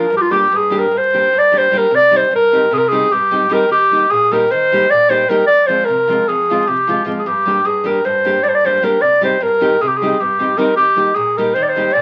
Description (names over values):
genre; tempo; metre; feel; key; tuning
balkan folk; 304 BPM (eighths); 9/8; straight; unclear; A4 = 440 Hz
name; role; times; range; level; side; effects
warm clarinet; melody; 0.0-12.0 s; F4 to D5; -15 LUFS; equal; none
nylon-string guitar; accompaniment; 0.0-12.0 s; F2 to G4; -24 LUFS; equal; none
room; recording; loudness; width
moderate small room reverb, RT60 0.6 s; very old 78 rpm record, vinyl crackle; -14 LUFS; mono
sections
0.1-12.0 A section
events
none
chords
0.1 Gm; 1.9 Cm; 3.7 Eb; 5.5 Fm; 7.2 Gm; 9.0 Cm; 10.8 Eb